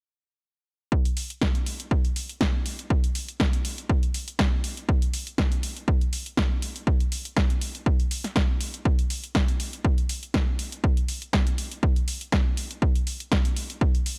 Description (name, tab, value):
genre	house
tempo	121 BPM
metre	4/4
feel	swing 54% on 16ths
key	none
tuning	none
part	electronic kick drum	drums	0.9-13.9 s	none	-26 LUFS	equal	none
part	house drum kit	drums	1.1-14.2 s	hi-hat, snare drum	-32 LUFS	equal	none
room	little or no reverb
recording	none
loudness	-26 LUFS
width	mono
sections	0.9-14.2 A section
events	none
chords	none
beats	| 0.92 1.42 1.91 2.41 | 2.90 3.40 3.90 4.39 | 4.89 5.38 5.88 6.38 | 6.87 7.37 7.86 8.36 | 8.86 9.35 9.85 10.34 | 10.84 11.33 11.83 12.33 | 12.82 13.32 13.81